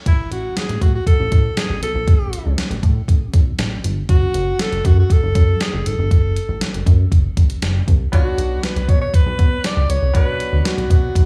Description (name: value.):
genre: 1980s-style pop.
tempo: 119 BPM.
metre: 4/4.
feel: straight.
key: unclear.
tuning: A4 = 441 Hz.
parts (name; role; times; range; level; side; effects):
bright grand piano; accompaniment; 0.0-0.1, 8.1-11.3 s; B3 to C#5; -32 LUFS; equal; none.
bright alto saxophone; melody; 0.1-11.3 s; E4 to D5; -26 LUFS; equal; none.
chorused synth bass; bass; 0.1-11.3 s; F#1 to B2; -21 LUFS; equal; none.
clean 12-bit digital drum machine; drums; 0.1-11.3 s; hi-hat, kick drum, snare drum; -18 LUFS; equal; none.
room: digital ambience.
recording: small room ambience.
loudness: -17 LUFS.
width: mono.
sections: 0.1-11.3 A section.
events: none.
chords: 0.1 N.C.; 4.1 F#m; 8.1 Bmadd9.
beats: | 0.06 0.56 1.07 1.57 | 2.08 2.58 3.08 3.59 | 4.09 4.60 5.10 5.61 | 6.11 6.61 7.12 7.62 | 8.13 8.63 9.13 9.64 | 10.14 10.65 11.15.